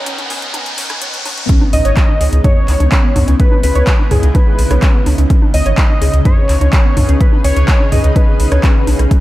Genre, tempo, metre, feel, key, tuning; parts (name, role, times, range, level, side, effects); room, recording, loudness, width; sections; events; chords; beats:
progressive house; 126 BPM; 4/4; straight; C# minor; A4 = 440 Hz
shimmering ambient pad; sustained chords; 0.0-9.2 s; C#2 to B4; -23 LUFS; equal; chorus, built-in reverb, sidechain pumping
riser and impact; sound effects; 0.0-3.4 s; -22 LUFS; equal
drifting glass-harmonics texture; texture; 0.0-1.5 s; B4 to B5; -41 LUFS; right 3 dB
soft round pluck; arpeggios; 0.1-9.2 s; B3 to C#5; -23 LUFS; equal; analog chorus, sidechain pumping, diffuse ambient delay
deep house drum kit; drums; 0.1-9.2 s; handclaps, hi-hat, rim click; -23 LUFS; equal; overdrive
punchy analog drum machine; percussion; 0.2-9.0 s; congas, rim click, toms; -22 LUFS; right 1 dB; sidechain pumping on perc, sidechain pumping on toms, sidechain pumping on snare
electronic kick drum; drums; 1.5-9.2 s; -11 LUFS; equal; overdrive
wide unison lead; melody; 1.7-8.9 s; G#4 to D#5; -21 LUFS; equal; sidechain pumping, diffuse ambient delay
soft synth bell; second line; 1.7-8.8 s; G#4 to D#5; -25 LUFS; equal; chorus, sidechain pumping, diffuse ambient delay
round analog bass; bass; 1.7-9.1 s; G#1 to C#2; -12 LUFS; equal; sidechain pumping
light reverb, digital ambience; high-pass filter; -10 LUFS; side -16 dB against mid
0.0-1.5 A section; 1.5-9.2 B section
build-up 0.0-1.5; riser 0.0-1.5; drop 1.5-9.2; impact 1.5-3.4
0.0 G#m/C#; 1.5 C#m7; 5.3 G#m
0.06 0.54 1.02 | 1.49 1.97 2.44 2.92 | 3.40 3.87 4.35 4.83 | 5.30 5.78 6.25 6.73 | 7.21 7.68 8.16 8.63 | 9.11